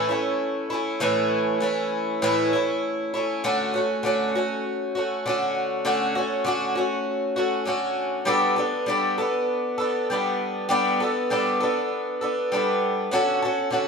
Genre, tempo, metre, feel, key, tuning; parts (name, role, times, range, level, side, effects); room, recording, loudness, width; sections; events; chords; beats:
rock; 99 BPM; 4/4; straight; D major; A4 = 440 Hz
picked twelve-string acoustic guitar; solo; 0.0-13.9 s; A2 to A4; -22 LUFS; equal
wet stone room reverb, RT60 1.2 s; band playing live in one room; -22 LUFS; side -5 dB against mid
0.0-3.4 A section; 3.4-13.9 B section
0.0 A; 3.4 Dmaj7; 8.3 Gadd9; 13.1 Dmaj7
0.41 | 1.02 1.62 2.23 2.83 | 3.44 4.05 4.65 5.26 | 5.86 6.47 7.08 7.68 | 8.29 8.89 9.50 10.10 | 10.71 11.31 11.92 12.52 | 13.13 13.73